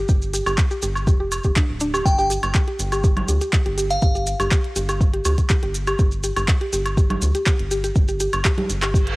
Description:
minimal techno; 122 BPM; 4/4; straight; A4 = 440 Hz
rubbery square bass; bass; 0.0-9.1 s; D1 to D2; -25 LUFS; equal; sidechain pumping
mallet-like synth pluck; riff; 0.1-9.0 s; D4 to G4; -26 LUFS; equal; chorus, cassette tape, sidechain pumping, analog delay
electronic kick drum; drums; 0.1-9.0 s; -18 LUFS; equal; cassette tape
maracas; percussion; 0.1-9.0 s; -32 LUFS; right 1 dB
minimal click drum kit; drums; 0.3-9.2 s; handclaps, hi-hat; -27 LUFS; equal; cassette tape
woodblock and congas; percussion; 0.5-8.9 s; -27 LUFS; right 1 dB; overdrive, cassette tape
glassy synth bell; melody; 2.1-4.1 s; F5 to G5; -24 LUFS; equal; chorus, analog delay
reverse cymbal; sound effects; 9.0-9.2 s; -27 LUFS; right 4 dB
digital ambience; home recording on cassette; -18 LUFS; side -22 dB against mid
0.0-9.2 A section
reverse cymbal 9.0
0.0 G5
| 0.09 0.58 1.07 1.56 | 2.06 2.55 3.04 3.53 | 4.02 4.51 5.01 5.50 | 5.99 6.48 6.97 7.46 | 7.96 8.45 8.94

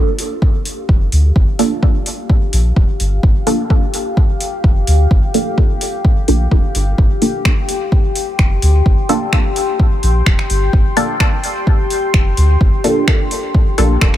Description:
dub techno; 128 BPM; 4/4; swing 53% on 16ths; G minor; A4 = 440 Hz
deep dark ambient pad; sustained chords; 0.7-14.2 s; G4 to C6; -23 LUFS; left 4 dB; chorus, built-in reverb, sidechain pumping
filtered dub chord stab; stabs; 0.0-13.9 s; Bb3 to A4; -19 LUFS; right 1 dB; phaser, sidechain pumping, dub echo
deep house drum kit; drums; 0.2-14.2 s; finger snaps, hi-hat; -21 LUFS; equal; overdrive
electronic kick drum; drums; 0.4-14.1 s; -13 LUFS; equal; overdrive
soft dub sub bass; bass; 0.9-14.1 s; D1 to D2; -14 LUFS; equal; sidechain pumping
digital ambience; -12 LUFS; side -13 dB against mid
0.0-14.2 A section
filter sweep on synth stab 0.0-14.2
0.0 Gm7
0.42 0.89 | 1.36 1.83 2.30 2.77 | 3.23 3.70 4.17 4.64 | 5.11 5.58 6.05 6.51 | 6.98 7.45 7.92 8.39 | 8.86 9.33 9.80 10.27 | 10.73 11.20 11.67 12.14 | 12.61 13.08 13.55 14.02

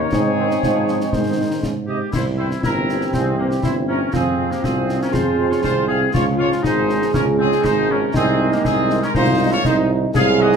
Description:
military-style march for wind band; 120 BPM; 2/4; straight; Ab major; A4 = 441 Hz
dark trumpet section; melody; 0.0-10.6 s; G4 to F5; -24 LUFS; equal
clear euphonium; second line; 0.0-10.6 s; C4 to Ab4; -22 LUFS; right 4 dB
mellow woodwind section; second line; 0.0-10.5 s; Bb3 to Db5; -24 LUFS; left 4 dB
warm French horn section; accompaniment; 0.0-10.5 s; Eb3 to Eb4; -28 LUFS; left 2 dB
warm tuba; bass; 0.0-10.6 s; G1 to Ab2; -22 LUFS; right 2 dB
concert snare drum, concert bass drum and clash cymbals; drums; 0.1-10.6 s; -24 LUFS; left 2 dB
warm trombone section; sustained chords; 0.4-10.6 s; C3 to C4; -26 LUFS; right 1 dB
moderate large studio reverb, RT60 0.9 s; -16 LUFS; side -6 dB against mid
0.0-2.1 A section; 2.1-10.6 A section
0.1 Ab; 2.1 C7; 4.1 Fm; 6.1 Db; 8.1 Ab/C
| 0.12 0.62 | 1.13 1.63 | 2.13 2.63 | 3.13 3.63 | 4.13 4.63 | 5.14 5.64 | 6.14 6.64 | 7.14 7.64 | 8.14 8.64 | 9.15 9.65 | 10.15

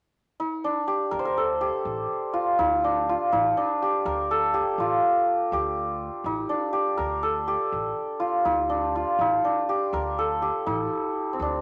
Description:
persian; 82 BPM (dotted quarters); 6/8; straight; D dastgah shur; A4 = 440 Hz
santur; melody; 0.4-11.6 s; C4 to C5; -25 LUFS; equal
upright bass; bass; 1.1-11.6 s; A1 to D2; -40 LUFS; equal
moderate studio reverb, RT60 0.6 s; -25 LUFS; mono
0.0-1.1 A section; 1.1-11.6 B section
0.39 | 1.12 1.85 | 2.59 3.32 | 4.05 4.78 | 5.52 6.25 | 6.99 7.72 | 8.46 9.19 | 9.93 10.67 | 11.40

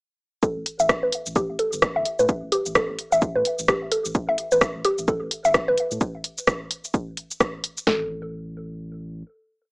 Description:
minimal techno; 129 BPM; 4/4; swing 59% on 16ths; A4 = 440 Hz
mallet-like synth pluck; riff; 0.4-8.1 s; G4 to E5; -22 LUFS; equal; chorus, sidechain pumping, cassette tape, analog delay
house drum kit; drums; 0.4-8.0 s; kick drum, snare drum; -26 LUFS; equal; cassette tape
house drum kit; drums; 0.4-7.9 s; hi-hat, rim click, shaker; -22 LUFS; equal; cassette tape
saturated sub bass; bass; 0.6-9.2 s; G1 to A2; -36 LUFS; equal; sidechain pumping
moderate studio reverb, RT60 0.6 s; home recording on cassette, small speaker sound; -21 LUFS; side -29 dB against mid
0.4-7.9 groove; 7.9-9.7 final note
filter sweep on synth arpeggio sound 0.4-6.0
0.4 A5; 7.9 N.C.
| 0.43 0.89 1.36 1.82 | 2.29 2.75 3.22 3.68 | 4.15 4.62 5.08 5.54 | 6.01 6.47 6.94 7.41 | 7.87 8.34 8.80

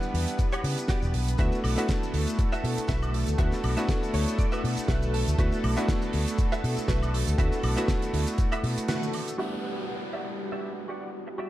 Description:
nu-disco, nu disco; 120 BPM; 4/4; swing 55% on 16ths; A4 = 440 Hz
clear electric grand piano; accompaniment; 0.0-11.5 s; G3 to F#5; -32 LUFS; equal; tape echo
lush unison pad; sustained chords; 0.0-11.5 s; G3 to B4; -35 LUFS; equal; chorus, vintage 12-bit sampler grit, sidechain pumping
direct-recorded clean electric guitar; riff; 0.0-11.5 s; F#4 to A5; -36 LUFS; right 1 dB; ensemble chorus, low-pass filter
damped 70s drum kit; drums; 0.0-11.5 s; hi-hat, shaker, snare drum, woodblock; -35 LUFS; right 1 dB; low-pass filter on hats, low-pass filter on snare, low-pass filter on perc, low-pass filter on room
maracas; percussion; 0.0-9.4 s; -47 LUFS; left 1 dB
fingered electric bass with an envelope filter; bass; 0.1-8.8 s; E1 to C#3; -27 LUFS; equal
electronic kick drum; drums; 0.4-8.5 s; -26 LUFS; equal
downlifter; sound effects; 9.4-11.5 s; -39 LUFS; right 1 dB
light reverb, small room ambience; dark, warm production; -25 LUFS; side -14 dB against mid
0.0-9.4 A section; 9.4-11.5 B section
clean electric guitar fill 3.9-5.4; break 8.9-9.4; band accent 8.9; filter sweep on clean electric guitar 9.4-11.5; filter sweep on analog synth pad 9.4-11.5
0.0 Em9; 1.4 D69; 9.4 Em9
0.39 0.89 | 1.39 1.89 2.39 2.89 | 3.39 3.89 4.39 4.89 | 5.39 5.89 6.39 6.89 | 7.39 7.89 8.39 8.89 | 9.39 9.89 10.39 10.89 | 11.39

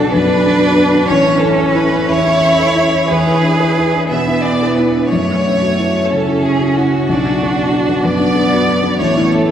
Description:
neoclassical piano and strings; 61 BPM (dotted quarters); 6/8; rubato; A4 = 440 Hz
rich chamber violin section; melody; 0.0-9.5 s; F#4 to E5; -17 LUFS; left 1 dB
rich cello; second line; 0.0-9.5 s; A3 to G#4; -16 LUFS; right 3 dB
felt-muted upright piano; accompaniment; 0.0-9.5 s; A1 to B4; -16 LUFS; left 2 dB
warm analog pad; sustained chords; 0.1-9.5 s; B3 to E5; -26 LUFS; left 1 dB
wet cathedral reverb, RT60 5.1 s; recorded in a church or concert hall; -11 LUFS; side -9 dB against mid
0.0-9.5 A section
0.0 Bm; 1.1 A; 3.1 E7; 5.1 F#m7; 7.1 Bm; 9.0 A
0.11 | 1.07 2.06 | 3.07 4.09 | 5.10 6.09 | 7.06 8.02 | 8.98

